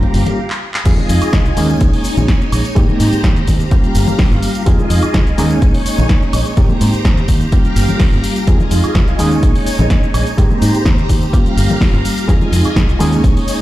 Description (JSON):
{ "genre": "filtered disco house", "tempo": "126 BPM", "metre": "4/4", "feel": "straight", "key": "F minor", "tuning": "A4 = 439 Hz", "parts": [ { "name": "barky reed electric piano", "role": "accompaniment", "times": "0.0-13.6 s", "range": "G3 to Ab4", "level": "-19 LUFS", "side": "equal", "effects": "overdrive, fast tremolo, phaser, sidechain pumping, low-pass filter" }, { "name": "phased string machine", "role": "sustained chords", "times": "0.0-13.6 s", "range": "Eb4 to Bb5", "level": "-22 LUFS", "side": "equal", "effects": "ensemble chorus, phaser, sidechain pumping, low-pass filter" }, { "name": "modern bright fingered electric bass", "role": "bass", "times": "0.0-13.3 s", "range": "G1 to Ab2", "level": "-16 LUFS", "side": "equal", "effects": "sidechain pumping, low-pass filter" }, { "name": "electronic kick drum", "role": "drums", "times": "0.0-13.3 s", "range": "none", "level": "-13 LUFS", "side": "equal", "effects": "none" }, { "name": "punchy analog drum machine", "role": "drums", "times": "0.0-13.6 s", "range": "crash cymbal, handclaps, hi-hat, shaker, snare drum, woodblock", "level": "-22 LUFS", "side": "equal", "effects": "sidechain pumping on hats, sidechain pumping on perc, sidechain pumping on cymbals" }, { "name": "tambourine and congas", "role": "percussion", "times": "0.1-13.6 s", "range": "none", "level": "-24 LUFS", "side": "left 3 dB", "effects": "sidechain pumping on perc, low-pass filter on perc" } ], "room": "little or no reverb", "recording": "played on a big sound system in a bare room, large studio reverb", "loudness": "-11 LUFS", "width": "side -15 dB against mid", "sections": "0.9-13.6 A section", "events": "stop 0.4-0.9; drum fill 0.5-0.9; drop 0.9-13.6", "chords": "0.0 Gm7b5; 0.9 Fm7; 1.6 Eb7sus4; 2.8 Abmaj9; 3.7 Gm7b5; 4.7 Fm7; 5.4 Eb7sus4; 6.6 Abmaj9; 7.5 Gm7b5; 8.5 Fm7; 9.2 Eb7sus4; 10.4 Abmaj9; 11.3 Gm7b5; 12.3 Fm7; 13.0 Eb7sus4", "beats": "0.38 | 0.86 1.33 1.81 2.29 | 2.76 3.24 3.72 4.19 | 4.67 5.14 5.62 6.10 | 6.57 7.05 7.53 8.00 | 8.48 8.95 9.43 9.91 | 10.38 10.86 11.34 11.81 | 12.29 12.76 13.24" }